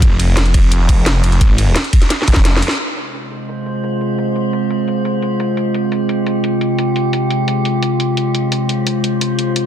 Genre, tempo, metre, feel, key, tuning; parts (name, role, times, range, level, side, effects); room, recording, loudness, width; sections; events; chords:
dark technical drum and bass; 173 BPM; 4/4; straight; F minor; A4 = 441 Hz
snarling distorted saw bass; bass; 0.0-2.6 s; F1 to Ab1; -13 LUFS; equal; distortion, overdrive, sidechain pumping
drum and bass drum kit; drums; 0.0-9.6 s; crash cymbal, hi-hat, ride cymbal, rim click, snare drum; -20 LUFS; equal; low-pass filter on hats, low-pass filter on cymbals, low-pass filter on snare, low-pass filter on room
electronic kick drum; drums; 0.0-2.4 s; -12 LUFS; equal
metallic inharmonic drone; sustained chords; 3.2-9.7 s; C3 to C5; -16 LUFS; equal; chorus, built-in reverb, sidechain pumping
light reverb; dense, heavily limited modern master; -13 LUFS; side -10 dB against mid
0.0-2.8 A section; 2.8-9.7 B section
drop 0.0-2.8; drum fill 2.1-2.8; band accent 2.7; filter sweep on drum 2.8-9.7
0.0 Fm